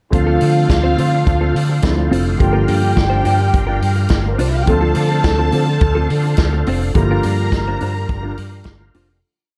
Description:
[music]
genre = disco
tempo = 106 BPM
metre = 4/4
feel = straight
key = D minor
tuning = A4 = 440 Hz
[part]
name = dark studio string section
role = second line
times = 0.1-8.9 s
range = Bb3 to Bb5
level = -24 LUFS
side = equal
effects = none
[part]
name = clean electric guitar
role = accompaniment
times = 0.1-9.1 s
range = C4 to C5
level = -26 LUFS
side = equal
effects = phaser
[part]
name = warm baby grand piano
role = accompaniment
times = 0.1-9.3 s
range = D3 to F4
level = -25 LUFS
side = equal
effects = none
[part]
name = overdriven tonewheel organ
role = sustained chords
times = 0.1-9.2 s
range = D4 to F5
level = -30 LUFS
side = equal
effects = chorus vibrato, slow rotary speaker
[part]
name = overdriven fingered electric bass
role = bass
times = 0.1-9.2 s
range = F1 to D3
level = -20 LUFS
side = equal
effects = none
[part]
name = vintage drum kit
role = drums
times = 0.1-9.1 s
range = hi-hat, kick drum, snare drum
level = -22 LUFS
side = equal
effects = none
[sound]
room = light reverb, studio ambience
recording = dark, warm production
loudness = -16 LUFS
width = mono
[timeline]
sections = 0.1-9.2 groove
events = fade-out 7.0-9.2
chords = 0.1 Dm7; 2.4 Gm7; 4.7 Dm7; 7.0 Gm7

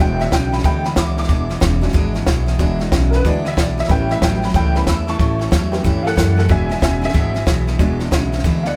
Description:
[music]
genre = rockabilly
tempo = 185 BPM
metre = 4/4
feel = swing 64% on 8ths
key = E mixolydian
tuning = A4 = 441 Hz
[part]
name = honky-tonk upright piano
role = accompaniment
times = 0.0-8.8 s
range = F#3 to E6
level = -25 LUFS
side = equal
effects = none
[part]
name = picked steel-string acoustic guitar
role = accompaniment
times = 0.0-8.8 s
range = E2 to E4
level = -27 LUFS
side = equal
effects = none
[part]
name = electric guitar through a small old amp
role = riff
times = 0.0-8.8 s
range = E2 to F#3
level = -26 LUFS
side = equal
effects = none
[part]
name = upright bass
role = bass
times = 0.0-8.7 s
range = E1 to G2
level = -22 LUFS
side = equal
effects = none
[part]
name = compact cocktail drum kit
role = drums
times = 0.2-8.7 s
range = hi-hat, kick drum, snare drum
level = -21 LUFS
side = equal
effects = none
[sound]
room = light reverb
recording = band playing live in one room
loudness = -17 LUFS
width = mono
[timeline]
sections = 0.0-8.8 A section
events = honky-tonk piano solo 0.0-8.8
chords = 0.0 E7; 3.9 A7; 6.5 E7

